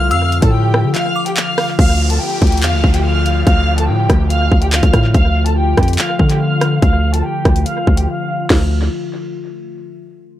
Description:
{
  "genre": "hip hop, drill",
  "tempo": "143 BPM",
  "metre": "4/4",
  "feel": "half-time",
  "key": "D minor",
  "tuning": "A4 = 440 Hz",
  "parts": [
    { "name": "dark studio violin section", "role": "melody", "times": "0.0-8.7 s", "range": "G4 to F6", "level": "-20 LUFS", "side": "equal", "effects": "low-pass filter, tape echo" },
    { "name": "delicate synth tine bell", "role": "second line", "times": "0.0-1.4 s", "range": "D6 to F6", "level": "-23 LUFS", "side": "left 4 dB", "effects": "chorus, phaser, tape echo" },
    { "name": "warbly tape-like pad", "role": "sustained chords", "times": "0.0-8.7 s", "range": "D3 to F4", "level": "-22 LUFS", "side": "left 3 dB", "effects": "chorus, built-in reverb, low-pass filter" },
    { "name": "long sustained 808-style bass", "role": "bass", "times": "0.0-8.9 s", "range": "C2 to D3", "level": "-15 LUFS", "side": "equal", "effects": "none" },
    { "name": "drill drum kit", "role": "drums", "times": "0.1-8.6 s", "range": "crash cymbal, handclaps, hi-hat, kick drum, rim click, snare drum", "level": "-15 LUFS", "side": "equal", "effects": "none" },
    { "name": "downlifter", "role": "sound effects", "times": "1.8-5.1 s", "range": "none", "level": "-27 LUFS", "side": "right 1 dB", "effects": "none" }
  ],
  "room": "little or no reverb",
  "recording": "echo-heavy mix",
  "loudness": "-12 LUFS",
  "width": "side -13 dB against mid",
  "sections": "0.0-1.8 A section; 1.8-8.5 B section; 8.5-10.2 C section",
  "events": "break 0.9-1.8, 8.1-8.5; filter sweep 1.8-8.5",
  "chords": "0.0 Dm"
}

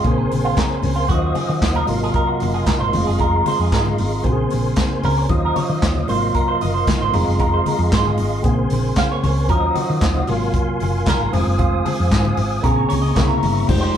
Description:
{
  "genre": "disco",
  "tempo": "114 BPM",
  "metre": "4/4",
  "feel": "straight",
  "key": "Eb dorian",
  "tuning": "A4 = 440 Hz",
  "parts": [
    { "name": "barky tine electric piano", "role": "accompaniment", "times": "0.0-14.0 s", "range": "C3 to C5", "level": "-23 LUFS", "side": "equal", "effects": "none" },
    { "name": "electric guitar with an envelope filter", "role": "accompaniment", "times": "0.0-14.0 s", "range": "Ab3 to F5", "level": "-23 LUFS", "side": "right 3 dB", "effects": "spring reverb" },
    { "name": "mellow tonewheel organ", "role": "sustained chords", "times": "0.0-14.0 s", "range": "F3 to Eb6", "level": "-25 LUFS", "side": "equal", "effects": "chorus vibrato, fast rotary speaker" },
    { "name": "hollow-body short-scale fingered electric bass", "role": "bass", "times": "0.0-13.9 s", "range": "F1 to Eb3", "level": "-21 LUFS", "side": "equal", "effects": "none" },
    { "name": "vintage drum kit", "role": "drums", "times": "0.0-14.0 s", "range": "crash cymbal, handclaps, hi-hat, kick drum, snare drum", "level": "-22 LUFS", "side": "equal", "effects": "none" },
    { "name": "congas", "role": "percussion", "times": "0.1-13.8 s", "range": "none", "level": "-28 LUFS", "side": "left 4 dB", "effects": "none" }
  ],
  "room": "moderate studio reverb, RT60 0.6 s",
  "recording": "band playing live in one room",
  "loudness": "-16 LUFS",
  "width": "side -9 dB against mid",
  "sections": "0.0-13.7 A section",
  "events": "clean electric guitar solo 0.0-13.7",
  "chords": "0.1 Bbm9; 1.1 Ebm9; 1.9 Ab13; 2.9 Fm7; 4.2 Bbm9; 5.3 Ebm9; 6.1 Ab13; 7.1 Fm7; 8.4 Bbm9; 9.5 Ebm9; 10.3 Ab13; 11.3 Fm7; 12.6 Bbm9; 13.2 C7b9"
}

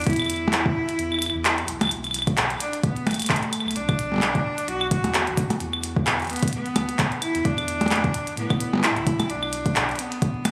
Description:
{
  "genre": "IDM",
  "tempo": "130 BPM",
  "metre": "4/4",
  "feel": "swing 56% on 16ths",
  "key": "unclear",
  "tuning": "A4 = 442 Hz",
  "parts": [
    { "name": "clear cello", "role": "melody", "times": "0.0-10.5 s", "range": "A3 to F#4", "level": "-30 LUFS", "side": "equal", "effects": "tape echo" },
    { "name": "warm sub bass", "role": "bass", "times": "0.0-10.5 s", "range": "E1 to A2", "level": "-34 LUFS", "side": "equal", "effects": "tube saturation" },
    { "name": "glitchy drum kit", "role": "drums", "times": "0.0-10.5 s", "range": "claves, handclaps, hi-hat, percussion blips", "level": "-26 LUFS", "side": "equal", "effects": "overdrive" },
    { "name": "electronic kick drum", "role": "drums", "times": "0.1-10.3 s", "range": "none", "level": "-26 LUFS", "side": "equal", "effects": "overdrive" }
  ],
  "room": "light reverb",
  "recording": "recorded on a phone in the room, club reverb, compression",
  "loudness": "-24 LUFS",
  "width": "mono",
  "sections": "0.0-10.5 A section",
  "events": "kick drops out 1.0-1.9",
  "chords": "0.0 N.C.; 1.9 Bm; 5.6 E7sus4; 9.3 Bm"
}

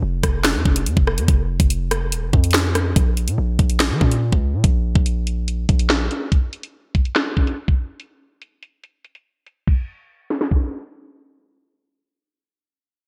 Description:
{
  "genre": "hip hop, drill",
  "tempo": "143 BPM",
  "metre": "4/4",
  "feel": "half-time",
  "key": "Bb minor",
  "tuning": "A4 = 442 Hz",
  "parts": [
    { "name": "hard-hitting 808-style bass", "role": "bass", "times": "0.0-6.1 s", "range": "Eb1 to F3", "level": "-23 LUFS", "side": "equal", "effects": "none" },
    { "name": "drill drum kit", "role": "drums", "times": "0.2-10.6 s", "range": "crash cymbal, handclaps, hi-hat, kick drum, rim click, snare drum", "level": "-20 LUFS", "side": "equal", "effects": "gated reverb" }
  ],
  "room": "light reverb",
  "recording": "bright 1980s-style digital production, low-pass filter",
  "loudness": "-20 LUFS",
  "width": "mono",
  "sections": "0.0-3.0 A section; 3.0-9.7 B section; 9.7-13.0 C section",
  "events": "none",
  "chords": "none"
}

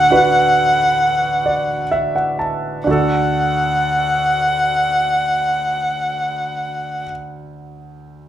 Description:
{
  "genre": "pop",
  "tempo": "61-69 BPM",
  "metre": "4/4",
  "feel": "straight",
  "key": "D major",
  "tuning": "A4 = 442 Hz",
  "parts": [
    { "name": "dark violin", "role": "melody", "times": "0.0-7.1 s", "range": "F#5", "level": "-16 LUFS", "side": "equal", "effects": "none" },
    { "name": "warm concert grand piano", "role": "accompaniment", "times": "0.0-8.3 s", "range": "D2 to A5", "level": "-21 LUFS", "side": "right 2 dB", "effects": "none" }
  ],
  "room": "light reverb",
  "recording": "band playing live in one room",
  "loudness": "-15 LUFS",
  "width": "side -11 dB against mid",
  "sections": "0.0-2.9 A section; 2.9-6.8 B section",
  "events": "slowing down 0.0-2.9; grand piano fill 1.0-2.9",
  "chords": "0.0 D"
}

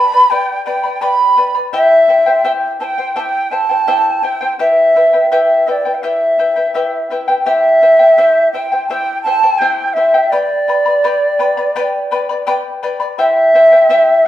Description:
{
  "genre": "andean folk, Andean ensemble",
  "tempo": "84 BPM",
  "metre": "4/4",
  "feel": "straight",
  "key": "unclear",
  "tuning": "A4 = 440 Hz",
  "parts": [
    { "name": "large quena", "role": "melody", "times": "0.0-14.3 s", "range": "D5 to B5", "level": "-11 LUFS", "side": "equal", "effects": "none" },
    { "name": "charango", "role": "accompaniment", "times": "0.0-14.3 s", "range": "E4 to B5", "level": "-18 LUFS", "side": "left 2 dB", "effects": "none" }
  ],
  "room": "wet large studio reverb, RT60 1.2 s",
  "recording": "band playing live in one room",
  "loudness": "-10 LUFS",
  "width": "side -13 dB against mid",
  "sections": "0.0-7.5 A section; 7.5-14.3 A section",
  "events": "none",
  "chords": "0.0 G; 1.7 C; 4.6 Em; 7.5 C; 10.3 G; 13.2 C"
}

